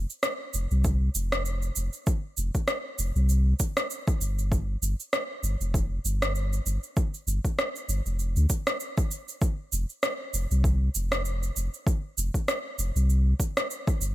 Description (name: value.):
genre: organic downtempo.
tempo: 98 BPM.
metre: 4/4.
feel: swing 56% on 16ths.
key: unclear.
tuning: A4 = 440 Hz.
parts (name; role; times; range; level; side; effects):
warm sub bass; bass; 0.0-14.1 s; F1 to D2; -25 LUFS; equal; none.
electronic cabasa and rim click; drums; 0.1-14.1 s; none; -30 LUFS; right 1 dB; none.
electronic kick drum; drums; 0.8-14.0 s; none; -25 LUFS; equal; none.
room: little or no reverb.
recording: none.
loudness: -25 LUFS.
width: side -16 dB against mid.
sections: 0.0-14.1 A section.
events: none.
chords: none.